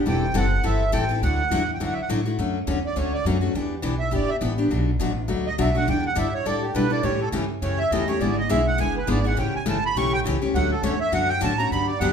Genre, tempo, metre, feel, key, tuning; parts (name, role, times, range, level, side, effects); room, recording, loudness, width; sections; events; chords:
acoustic string swing (jazz manouche); 206 BPM; 4/4; swing 57% on 8ths; D major; A4 = 440 Hz
picked steel-string acoustic guitar; accompaniment; 0.0-12.1 s; B2 to A4; -24 LUFS; left 2 dB
upright bass; bass; 0.0-12.1 s; E1 to B2; -26 LUFS; equal
accordion; melody; 0.1-12.1 s; G4 to C#6; -25 LUFS; right 3 dB; light tremolo tuning
wet large studio reverb, RT60 0.9 s; band playing live in one room; -21 LUFS; side -7 dB against mid
0.0-2.4 A section; 2.4-11.7 B section
accordion solo 2.4-12.1
0.1 Am7/E; 1.2 Dadd9; 2.4 Dmaj7; 3.5 Em7; 4.7 Bm7; 5.9 A7sus4; 7.0 A6; 8.2 E7/G#; 9.4 A7; 10.5 Dmaj9